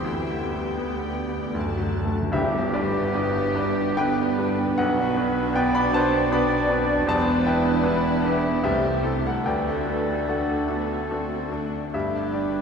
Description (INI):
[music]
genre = classical, romantic movement for piano and orchestra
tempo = 70-80 BPM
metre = 3/4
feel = rubato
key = G major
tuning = A4 = 440 Hz
[part]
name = clear baby grand piano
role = melody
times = 0.0-12.6 s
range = B1 to B5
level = -25 LUFS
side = left 1 dB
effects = none
[part]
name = warm chamber violin section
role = melody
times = 0.0-12.6 s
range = E4 to A5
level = -34 LUFS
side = left 3 dB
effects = none
[part]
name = mellow clarinet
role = second line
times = 0.0-12.6 s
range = B3 to E4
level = -37 LUFS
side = left 1 dB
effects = none
[part]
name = warm chamber violin section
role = second line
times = 0.0-12.6 s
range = G3 to E5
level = -35 LUFS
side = left 1 dB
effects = none
[part]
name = warm chamber viola section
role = accompaniment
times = 0.0-12.6 s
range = A3 to G4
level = -31 LUFS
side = right 5 dB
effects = none
[part]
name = dark chamber cello section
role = bass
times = 0.0-12.6 s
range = C2 to B2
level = -33 LUFS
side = right 2 dB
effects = none
[part]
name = dark studio double bass section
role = bass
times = 0.0-12.6 s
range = E1 to D2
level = -33 LUFS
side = right 1 dB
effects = none
[part]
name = timpani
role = percussion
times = 1.6-3.5 s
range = G2 to D3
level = -34 LUFS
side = equal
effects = none
[part]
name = mellow flute section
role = second line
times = 2.3-12.6 s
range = F#4 to D5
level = -33 LUFS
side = right 1 dB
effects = none
[part]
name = warm oboe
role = second line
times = 2.3-12.6 s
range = G4 to D5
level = -33 LUFS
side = right 1 dB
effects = none
[part]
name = mellow bassoon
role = accompaniment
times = 2.3-12.6 s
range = G3 to D4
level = -33 LUFS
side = right 2 dB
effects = none
[part]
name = dark French horn section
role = sustained chords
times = 2.3-12.6 s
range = A3 to D4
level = -32 LUFS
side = equal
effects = none
[part]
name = tam-tam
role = percussion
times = 2.3-5.5 s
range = none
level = -37 LUFS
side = left 1 dB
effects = none
[sound]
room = wet church reverb, RT60 3.5 s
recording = minimal, uncompressed stereo recording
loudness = -21 LUFS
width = side -6 dB against mid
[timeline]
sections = 0.0-2.3 A section; 2.3-12.6 B section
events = timpani fill 1.5-2.3; band accent 2.3-3.1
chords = 0.0 G/D; 1.5 D; 2.3 G; 4.8 Bm; 7.1 Em7; 8.6 Am7/C; 9.4 D; 11.9 G